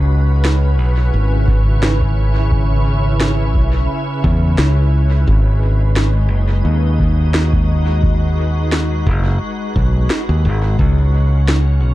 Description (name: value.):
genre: ambient dub.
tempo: 87 BPM.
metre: 4/4.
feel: swing 55% on 16ths.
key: unclear.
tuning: A4 = 440 Hz.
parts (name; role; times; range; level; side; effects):
soft additive organ-like pad; sustained chords; 0.0-11.9 s; C#3 to B4; -22 LUFS; left 1 dB; ensemble chorus, built-in reverb.
modern bright fingered electric bass; bass; 0.0-11.9 s; F#1 to E2; -14 LUFS; equal; none.
electronic snare drum; drums; 0.4-11.6 s; none; -21 LUFS; right 1 dB; dub echo.
electronic kick drum; drums; 1.5-10.9 s; none; -18 LUFS; equal; none.
room: little or no reverb.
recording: dark, warm production.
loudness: -13 LUFS.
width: side -16 dB against mid.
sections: 0.0-11.9 A section.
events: none.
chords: 0.0 C#m7; 5.3 G#m7; 10.8 N.C..